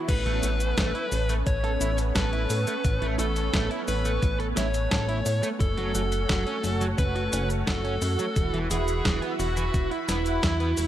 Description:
synthwave; 87 BPM; 4/4; straight; A major; A4 = 440 Hz
analog string pad; sustained chords; 0.0-10.9 s; E3 to B4; -31 LUFS; right 2 dB; ensemble chorus, sidechain pumping
dark smooth lead guitar; melody; 0.1-10.9 s; E4 to C#5; -31 LUFS; left 1 dB; overdrive, digital delay
chorused synth bass; bass; 0.1-10.9 s; E1 to A2; -28 LUFS; equal; tube saturation
clean 12-bit digital drum machine; drums; 0.1-10.9 s; cabasa, crash cymbal, hi-hat, snare drum; -32 LUFS; equal
electronic kick drum; drums; 0.1-10.6 s; -27 LUFS; equal
overdriven electric guitar; riff; 0.3-10.7 s; E3 to A4; -35 LUFS; right 3 dB; analog chorus, digital delay
light reverb, digital ambience; -23 LUFS; side -12 dB against mid
0.1-10.9 A section
0.1 Aadd9; 5.6 F#m; 8.4 Esus2
| 0.09 0.78 1.47 2.15 | 2.85 3.54 4.22 4.91 | 5.60 6.29 6.98 7.67 | 8.36 9.05 9.74 10.43

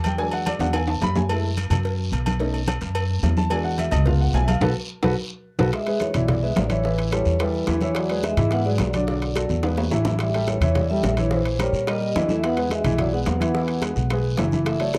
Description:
Afro-Cuban jazz; 215 BPM; 4/4; straight; E mixolydian; A4 = 439 Hz
clear upright piano; accompaniment; 0.0-15.0 s; D3 to B5; -28 LUFS; equal
upright bass; bass; 0.0-15.0 s; F#1 to A#2; -26 LUFS; equal
agogo bells and timbales; percussion; 0.0-15.0 s; -32 LUFS; equal
cowbell and bongos; percussion; 0.0-15.0 s; -35 LUFS; equal
congas; percussion; 0.1-15.0 s; -30 LUFS; equal
guiro; percussion; 0.1-15.0 s; -42 LUFS; equal
vibraphone with medium hard mallets; melody; 5.7-15.0 s; B4 to F#5; -30 LUFS; equal
mellow trombone; second line; 5.7-15.0 s; E3 to B3; -32 LUFS; equal
little or no reverb; dry, close 1970s-style studio recording; -22 LUFS; mono
0.0-5.7 A section; 5.7-15.0 B section
upright piano solo 0.0-5.7; drum fill 0.6-1.3, 4.9-5.7, 9.6-10.2; band accent 4.6-5.7
0.0 E9; 1.3 F#m7; 2.4 B9; 3.5 E9; 4.1 C#7; 4.6 B5; 5.7 E9; 6.8 A9; 8.0 E9; 9.1 Bm7; 9.6 E; 10.2 A5; 11.3 A#dim7; 12.4 Eadd9
| 0.18 0.46 0.74 1.02 | 1.29 1.57 1.85 2.13 | 2.40 2.68 2.96 3.23 | 3.51 3.79 4.07 4.34 | 4.62 4.90 5.17 5.45 | 5.73 6.01 6.29 6.57 | 6.84 7.12 7.40 7.68 | 7.96 8.24 8.52 8.80 | 9.08 9.36 9.64 9.92 | 10.20 10.48 10.76 11.04 | 11.31 11.59 11.87 12.15 | 12.43 12.71 12.99 13.27 | 13.55 13.83 14.11 14.39 | 14.67 14.95

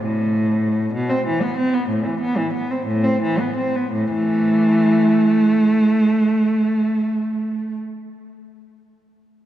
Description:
classical, baroque-style suite movement for unaccompanied cello; 54-64 BPM (dotted quarters); 12/8; rubato; A minor; A4 = 439 Hz
rich cello; solo; 0.0-7.7 s; A2 to C4; -17 LUFS; right 1 dB
wet church reverb, RT60 3.3 s; minimal, uncompressed stereo recording; -16 LUFS; side -12 dB against mid
0.0-4.0 A section; 4.0-8.1 B section
slowing down 0.0-4.0
0.0 Am; 4.0 A5
| 0.00 0.93 1.90 2.89 | 3.95 4.99 6.03 7.08

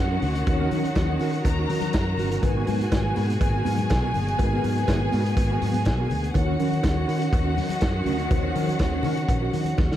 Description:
disco; 122 BPM; 4/4; straight; G# minor; A4 = 440 Hz
warm symphonic violin section; second line; 0.0-10.0 s; F#4 to A#5; -30 LUFS; equal
mellow tine electric piano; accompaniment; 0.0-10.0 s; D#3 to C#5; -32 LUFS; left 2 dB; medium stereo tremolo
clear studio string section; sustained chords; 0.0-10.0 s; A#2 to F#4; -31 LUFS; left 1 dB
fingered electric bass; bass; 0.0-10.0 s; G1 to D#3; -26 LUFS; equal
mellow electric guitar; accompaniment; 0.1-9.9 s; B3 to C#5; -32 LUFS; right 6 dB; phaser
vintage drum kit; drums; 0.2-10.0 s; hi-hat, kick drum, snare drum; -26 LUFS; equal
congas; percussion; 0.2-9.9 s; -34 LUFS; left 8 dB
cowbell; percussion; 0.5-9.9 s; -39 LUFS; right 5 dB
light reverb; dark, warm production; -21 LUFS; side -12 dB against mid
0.0-10.0 A section
drum fill 9.8
0.0 D#m7; 2.4 G#m9; 6.3 D#m7
| 0.47 0.96 1.45 1.94 | 2.43 2.92 3.41 3.90 | 4.39 4.88 5.37 5.86 | 6.35 6.84 7.33 7.82 | 8.31 8.80 9.29 9.78

